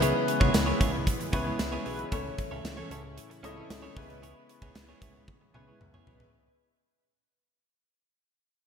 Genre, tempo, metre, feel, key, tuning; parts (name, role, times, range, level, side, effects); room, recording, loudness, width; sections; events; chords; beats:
1980s-style pop; 114 BPM; 4/4; straight; C# minor; A4 = 439 Hz
warm grand piano; accompaniment; 0.0-6.4 s; A3 to D#5; -34 LUFS; left 3 dB; wide subtle chorus
chorused pulse-width pad; sustained chords; 0.0-6.3 s; A2 to E4; -37 LUFS; left 1 dB
direct-recorded clean electric guitar; riff; 0.0-6.2 s; B3 to C#5; -36 LUFS; right 4 dB; wide subtle chorus, digital delay
fat analog bass; bass; 0.0-6.3 s; B1 to C#2; -35 LUFS; right 1 dB
gated 80s drum kit; drums; 0.0-6.3 s; hi-hat, kick drum, snare drum, tambourine, toms; -30 LUFS; equal; gated reverb
mellow synth brass; stabs; 0.7-6.3 s; E3 to B4; -42 LUFS; right 1 dB
moderate lush hall reverb, RT60 2.0 s, small room reverb; bright 1980s-style digital production; -26 LUFS; side -7 dB against mid
0.0-6.3 A section
fade-out 0.0-6.3; drum fill 5.3-6.3
0.0 C#m7; 2.1 A/C#; 4.0 C#m7
| 0.02 0.54 1.07 1.60 | 2.12 2.65 3.18 3.70 | 4.23 4.75 5.28 5.81